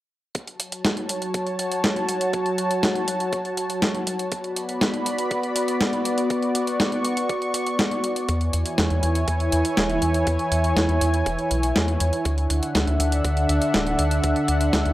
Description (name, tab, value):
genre	italo disco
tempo	121 BPM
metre	4/4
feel	straight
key	F# minor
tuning	A4 = 439 Hz
part	lush unison pad	sustained chords	0.8-14.9 s	D3 to C#6	-23 LUFS	equal	chorus
part	clean 12-bit digital drum machine	drums	0.3-14.9 s	hi-hat, snare drum	-25 LUFS	equal	none
part	electronic kick drum	drums	0.3-14.8 s	none	-35 LUFS	equal	none
part	round analog bass	bass	8.3-14.9 s	D1 to E2	-23 LUFS	equal	none
room	light reverb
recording	dry, gritty hardware recording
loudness	-20 LUFS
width	side -15 dB against mid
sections	0.4-14.9 A section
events	none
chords	0.4 F#m; 4.3 Bm; 8.3 E6; 12.3 Dadd9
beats	| 0.35 0.85 1.34 1.84 | 2.33 2.83 3.33 3.82 | 4.32 4.81 5.31 5.80 | 6.30 6.80 7.29 7.79 | 8.29 8.78 9.28 9.77 | 10.27 10.76 11.26 11.76 | 12.25 12.75 13.24 13.74 | 14.23 14.73